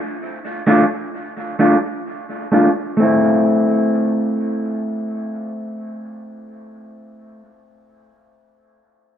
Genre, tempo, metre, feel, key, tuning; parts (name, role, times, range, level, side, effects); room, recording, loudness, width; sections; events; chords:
reggae; 65 BPM; 4/4; straight; A minor; A4 = 438 Hz
electric guitar at the edge of break-up; accompaniment; 0.7-7.5 s; A3 to F4; -16 LUFS; equal; low-pass filter, dub echo
moderate echo chamber reverb, RT60 1.8 s; -15 LUFS; side -9 dB against mid
0.0-3.0 A section; 3.0-6.7 B section
filter sweep on clean electric guitar 0.0-3.0
0.0 Dm; 3.0 Am